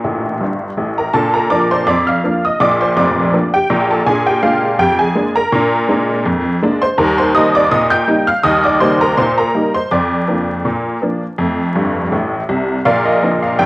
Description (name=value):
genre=ragtime piano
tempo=82 BPM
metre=2/4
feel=swing 54% on 16ths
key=Bb major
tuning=A4 = 438 Hz
part: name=honky-tonk upright piano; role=solo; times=0.0-13.7 s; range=F1 to G6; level=-12 LUFS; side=equal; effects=cassette tape
room=moderate spring reverb, RT60 1.9 s, small room ambience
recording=home recording on cassette, vinyl crackle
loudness=-12 LUFS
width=side -20 dB against mid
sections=0.0-1.1 A section; 1.1-12.9 A section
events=honky-tonk piano fill 0.0-1.1, 11.8-12.9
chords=0.0 Bb; 4.1 Bb7; 7.0 Eb; 9.9 Bb/F; 11.4 F; 12.9 Bb